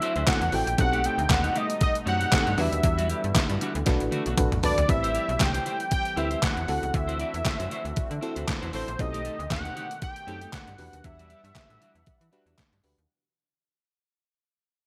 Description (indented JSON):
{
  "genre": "early-eighties boogie funk",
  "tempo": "117 BPM",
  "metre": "4/4",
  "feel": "swing 56% on 16ths",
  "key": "E minor",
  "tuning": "A4 = 440 Hz",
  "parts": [
    { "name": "fat analog lead", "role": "melody", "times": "0.0-12.6 s", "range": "C5 to G5", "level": "-31 LUFS", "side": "equal", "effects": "chorus" },
    { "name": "warm analog pad", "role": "sustained chords", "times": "0.0-13.1 s", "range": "B2 to F#5", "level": "-41 LUFS", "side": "equal", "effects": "none" },
    { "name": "clean electric guitar", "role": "riff", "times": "0.0-13.0 s", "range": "G3 to D5", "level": "-38 LUFS", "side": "equal", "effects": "subtle chorus" },
    { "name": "detuned 8-bit digital drum machine", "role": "drums", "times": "0.0-13.1 s", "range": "handclaps, hi-hat, kick drum, snare drum, toms", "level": "-29 LUFS", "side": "equal", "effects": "overdrive, gated reverb" },
    { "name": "slap-like FM bass", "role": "bass", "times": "0.2-13.1 s", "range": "A1 to E3", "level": "-33 LUFS", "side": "equal", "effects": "none" },
    { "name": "FM electric piano", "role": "accompaniment", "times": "0.3-13.0 s", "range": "C4 to A5", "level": "-35 LUFS", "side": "equal", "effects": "none" }
  ],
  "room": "moderate plate reverb, RT60 1.6 s",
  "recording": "bright 1980s-style digital production",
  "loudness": "-26 LUFS",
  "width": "mono",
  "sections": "0.0-4.9 A section; 4.9-13.1 B section",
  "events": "drum fill 3.9-4.9; FM electric piano fill 4.1-4.9; fade-out 4.9-13.1",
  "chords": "0.0 D9; 0.8 B7b9b13; 2.6 Em9; 3.9 Bm7; 4.9 Am7; 6.7 D9; 9.0 B7b9b13; 10.8 Em9"
}